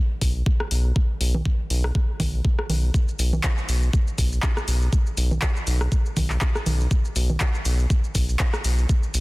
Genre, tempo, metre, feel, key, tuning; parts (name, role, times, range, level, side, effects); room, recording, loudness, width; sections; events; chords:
acid house; 121 BPM; 4/4; swing 56% on 16ths; A4 = 440 Hz
round analog bass; bass; 0.2-9.2 s; B1; -21 LUFS; equal; sidechain pumping
electronic kick drum; drums; 0.2-9.0 s; -22 LUFS; equal
punchy analog drum machine; drums; 0.2-9.2 s; congas, handclaps, hi-hat, rim click, shaker; -28 LUFS; equal; overdrive
little or no reverb; dense, heavily limited modern master; -20 LUFS; side -22 dB against mid
0.0-9.2 A section